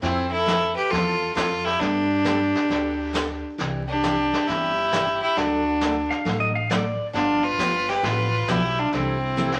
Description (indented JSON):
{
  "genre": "country, western swing",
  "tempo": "135 BPM",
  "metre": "4/4",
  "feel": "swing 67% on 8ths",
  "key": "C major",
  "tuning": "A4 = 443 Hz",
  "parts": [
    { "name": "clear fiddle", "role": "melody", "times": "0.0-9.6 s", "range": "C4 to G4", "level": "-25 LUFS", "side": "equal", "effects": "none" },
    { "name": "dark fiddle", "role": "second line", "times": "0.0-9.6 s", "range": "E4 to B4", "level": "-33 LUFS", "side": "equal", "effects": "none" },
    { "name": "picked steel-string acoustic guitar", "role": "accompaniment", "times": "0.0-9.5 s", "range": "C3 to A4", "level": "-32 LUFS", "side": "equal", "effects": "none" },
    { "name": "upright bass", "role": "bass", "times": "0.0-9.6 s", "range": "G1 to G2", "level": "-33 LUFS", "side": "equal", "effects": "none" },
    { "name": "vintage brush drum kit", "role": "drums", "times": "0.0-9.6 s", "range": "brushed snare drum, hi-hat, snare drum", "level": "-33 LUFS", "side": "equal", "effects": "none" },
    { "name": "pedal steel guitar", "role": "second line", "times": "6.1-7.1 s", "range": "D5 to F5", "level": "-28 LUFS", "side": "equal", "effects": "none" }
  ],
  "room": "wet studio reverb, RT60 0.7 s",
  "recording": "vinyl crackle",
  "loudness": "-23 LUFS",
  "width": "mono",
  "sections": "0.0-9.6 A section",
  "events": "drum fill 9.4",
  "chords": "0.0 Fmaj7; 1.8 Gadd9; 3.6 Cadd9; 5.4 D; 7.1 G7; 8.9 C6",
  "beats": "| 0.02 0.47 0.91 1.36 | 1.81 2.25 2.70 3.14 | 3.59 4.03 4.48 4.92 | 5.37 5.81 6.26 6.70 | 7.15 7.59 8.04 8.48 | 8.93 9.37"
}